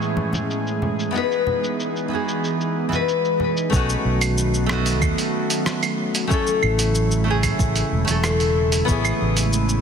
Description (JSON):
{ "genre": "sunset chillout", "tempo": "93 BPM", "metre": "4/4", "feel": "straight", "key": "unclear", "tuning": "A4 = 439 Hz", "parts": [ { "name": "nylon-string guitar", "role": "accompaniment", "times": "0.0-9.8 s", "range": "A2 to B4", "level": "-23 LUFS", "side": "moving between left 6 dB and right 3 dB", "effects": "auto-pan, ping-pong delay" }, { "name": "airy breathy pad", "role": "sustained chords", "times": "0.0-9.8 s", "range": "C#3 to G#4", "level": "-25 LUFS", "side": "right 2 dB", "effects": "chorus" }, { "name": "dusty soul sampler-style drum kit", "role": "drums", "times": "0.0-9.8 s", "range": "claves, hi-hat, rim click, shaker", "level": "-26 LUFS", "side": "right 3 dB", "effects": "overdrive, low-pass filter on perc, low-pass filter on hats, low-pass filter on snare" }, { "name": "congas", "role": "percussion", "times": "0.2-3.5 s", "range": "none", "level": "-29 LUFS", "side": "equal", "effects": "none" }, { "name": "fretless electric bass", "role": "bass", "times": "3.7-9.8 s", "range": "E1 to D#2", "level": "-21 LUFS", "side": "equal", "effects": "lush chorus" }, { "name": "electronic kick drum", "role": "drums", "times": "3.7-9.0 s", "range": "none", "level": "-24 LUFS", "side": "right 1 dB", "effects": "none" } ], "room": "moderate lush hall reverb, RT60 2.6 s", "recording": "dense, heavily limited modern master", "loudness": "-18 LUFS", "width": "side -7 dB against mid", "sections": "0.0-3.7 A section; 3.7-9.8 B section", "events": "none", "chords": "0.0 Amaj7; 1.1 Emaj7; 3.7 B7; 6.3 F#m7/A; 8.9 Amaj7", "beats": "0.50 | 1.14 1.79 2.43 3.08 | 3.72 4.37 5.01 5.66 | 6.30 6.95 7.59 8.24 | 8.88 9.53" }